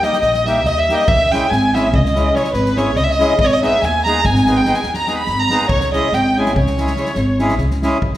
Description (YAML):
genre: balkan folk, Balkan wedding band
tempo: 285 BPM (eighths)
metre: 11/8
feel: straight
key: C# dorian sharp4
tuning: A4 = 440 Hz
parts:
  - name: dark violin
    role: melody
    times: 0.0-7.6 s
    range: B4 to B5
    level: -18 LUFS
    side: right 2 dB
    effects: none
  - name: warm violin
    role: second line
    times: 0.0-7.6 s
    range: B4 to B5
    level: -21 LUFS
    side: left 3 dB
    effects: none
  - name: accordion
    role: accompaniment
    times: 0.0-8.0 s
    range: G3 to G#4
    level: -21 LUFS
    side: left 1 dB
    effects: none
  - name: natural country drum kit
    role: percussion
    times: 0.0-8.2 s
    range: kick drum, snare drum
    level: -24 LUFS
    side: equal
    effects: none
  - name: upright bass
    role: bass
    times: 0.2-8.2 s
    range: G#1 to D#2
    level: -19 LUFS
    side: equal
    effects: none
room: wet recital hall reverb, RT60 1.5 s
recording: recorded in a church or concert hall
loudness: -13 LUFS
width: side -13 dB against mid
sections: 0.0-8.0 A section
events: none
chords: 0.0 D#; 1.1 C#m; 3.4 G#m; 5.7 C#m